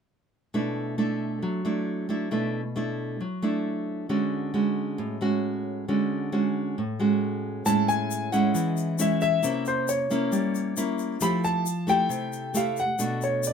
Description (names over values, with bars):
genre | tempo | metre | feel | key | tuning
bossa nova | 135 BPM | 4/4 | straight | unclear | A4 = 440 Hz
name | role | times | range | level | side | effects
nylon-string guitar | accompaniment | 0.5-13.5 s | A2 to G4 | -25 LUFS | right 1 dB | none
warm concert grand piano | melody | 7.7-13.5 s | C5 to B5 | -26 LUFS | left 1 dB | none
egg shaker | percussion | 7.7-13.5 s | none | -35 LUFS | left 7 dB | none
room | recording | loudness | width
moderate studio reverb, RT60 0.6 s | minimal, uncompressed stereo recording | -24 LUFS | side -7 dB against mid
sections
0.5-7.7 A section; 7.7-13.5 B section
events
none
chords
0.5 Bm7; 4.1 Dmaj7#11; 7.7 Amaj7; 9.4 C7b9; 11.2 Fmaj9; 13.0 Bm7